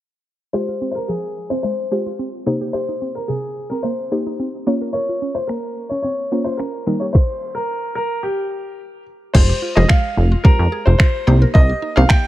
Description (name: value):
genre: dance-pop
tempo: 109 BPM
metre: 4/4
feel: straight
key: F minor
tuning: A4 = 440 Hz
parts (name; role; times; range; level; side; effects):
- clear baby grand piano; melody; 0.5-12.3 s; G4 to G5; -23 LUFS; left 1 dB; none
- mallet-like synth pluck; accompaniment; 0.5-12.3 s; G3 to Db5; -23 LUFS; left 1 dB; chorus, sidechain pumping
- mallet-like synth pluck; arpeggios; 0.5-12.2 s; C3 to Bb4; -27 LUFS; right 2 dB; chorus, sidechain pumping, tape echo
- smooth R&B drum kit; drums; 5.5-12.2 s; crash cymbal, finger snaps, kick drum, snare drum; -12 LUFS; equal; none
- plucky analog bass; bass; 9.3-12.1 s; F1 to F2; -13 LUFS; equal; sidechain pumping
room: little or no reverb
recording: low-pass filter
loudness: -16 LUFS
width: side -15 dB against mid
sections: 0.5-9.3 A section; 9.3-12.3 B section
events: filter sweep 0.5-9.3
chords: 0.5 Fmadd9; 2.5 Cm7; 4.7 Bbmadd9; 6.9 Eb; 9.3 Fmadd9; 11.3 Cm7